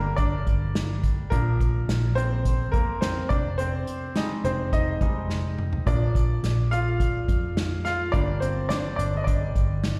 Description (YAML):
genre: piano-driven pop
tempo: 106 BPM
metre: 4/4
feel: straight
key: Bb mixolydian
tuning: A4 = 440 Hz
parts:
  - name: bright grand piano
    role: accompaniment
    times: 0.0-10.0 s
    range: F3 to F5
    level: -31 LUFS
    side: equal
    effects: slapback echo
  - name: vintage muted fingered electric bass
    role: bass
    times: 0.0-10.0 s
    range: F1 to F2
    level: -28 LUFS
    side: equal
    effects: none
  - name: unplugged drum kit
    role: drums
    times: 0.2-10.0 s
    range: hi-hat, kick drum, snare drum, toms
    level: -28 LUFS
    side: equal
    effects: none
room: small room reverb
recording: live gig heard through the venue's PA, recital hall reverb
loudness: -25 LUFS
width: mono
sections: 0.0-10.0 A section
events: grand piano solo 0.0-10.0; drum fill 5.3-5.9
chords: 0.0 Gm; 1.3 Bb; 3.3 Fm7; 5.9 Bb; 8.1 Gm